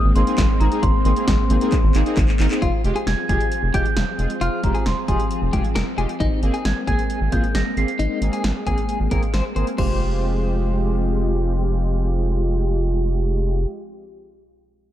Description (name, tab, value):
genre	synth-pop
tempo	134 BPM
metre	4/4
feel	straight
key	F minor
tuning	A4 = 439 Hz
part	large celesta	melody	0.0-13.7 s	Bb5 to F7	-28 LUFS	right 2 dB	low-pass filter
part	soft string machine	sustained chords	0.0-13.7 s	F3 to Ab4	-27 LUFS	left 1 dB	ensemble chorus, low-pass filter
part	rubbery square bass	bass	0.0-13.7 s	F1 to Ab1	-21 LUFS	equal	none
part	analog synth brass	accompaniment	0.2-13.7 s	Ab3 to Bb4	-27 LUFS	right 1 dB	chorus, low-pass filter
part	punchy analog drum machine	drums	0.2-9.9 s	crash cymbal, handclaps, hi-hat, kick drum, snare drum	-22 LUFS	equal	none
part	clean electric guitar	second line	2.6-11.1 s	Eb4 to C5	-28 LUFS	left 4 dB	tremolo, analog delay
room	light reverb, digital ambience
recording	dark, warm production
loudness	-18 LUFS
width	side -12 dB against mid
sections	0.0-2.6 A section; 2.6-9.8 B section; 9.8-13.4 C section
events	drum fill 1.7-2.6; filter sweep 2.6-9.8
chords	0.0 Abadd9; 2.6 Fmadd9; 6.2 Abadd9; 9.8 Fmadd9